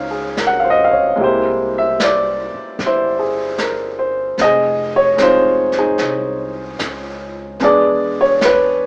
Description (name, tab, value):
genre	jazz ballad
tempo	74 BPM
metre	4/4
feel	swing 69% on 8ths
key	unclear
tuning	A4 = 439 Hz
part	clear upright piano	accompaniment	0.0-8.9 s	Ab3 to Gb5	-17 LUFS	equal	none
part	upright bass	bass	0.0-8.9 s	F1 to E2	-34 LUFS	equal	none
part	vintage brush drum kit	drums	0.4-8.9 s	brushed snare drum, hi-hat, snare drum	-27 LUFS	equal	none
room	wet studio reverb, RT60 0.5 s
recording	rough home demo mix, small speaker sound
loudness	-16 LUFS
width	mono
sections	0.0-8.9 A section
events	none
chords	0.0 Bbm7; 1.2 C7b13; 4.4 Fm7; 7.6 E7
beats	0.38 | 1.18 1.99 2.79 3.58 | 4.38 5.17 5.98 6.79 | 7.60 8.41